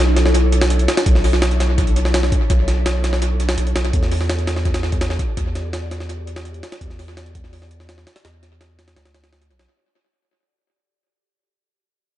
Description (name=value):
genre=drum and bass, jungle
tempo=167 BPM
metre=4/4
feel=straight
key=unclear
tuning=A4 = 440 Hz
part: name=ethereal airy pad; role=sustained chords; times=0.0-9.6 s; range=D4 to D5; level=-27 LUFS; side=equal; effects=ensemble chorus, built-in reverb, phaser
part: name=saturated sub bass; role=bass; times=0.0-9.7 s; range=B1 to E2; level=-19 LUFS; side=equal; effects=none
part: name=downlifter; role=sound effects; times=0.0-1.1 s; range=none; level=barely audible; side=none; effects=none
part: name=jungle sampler-style drum kit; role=drums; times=0.2-9.7 s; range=hi-hat, kick drum, snare drum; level=-20 LUFS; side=equal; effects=tape echo
room=digital ambience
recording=echo-heavy mix, nothing above 10.6 kHz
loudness=-16 LUFS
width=side -13 dB against mid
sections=0.0-9.7 A section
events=fade-out 0.0-9.7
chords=0.0 Bm11; 3.9 Em11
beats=0.34 0.70 | 1.06 1.42 1.78 2.14 | 2.50 2.86 3.22 3.58 | 3.94 4.30 4.66 5.01 | 5.37 5.73 6.09 6.45 | 6.81 7.17 7.53 7.89 | 8.25 8.61 8.97 9.33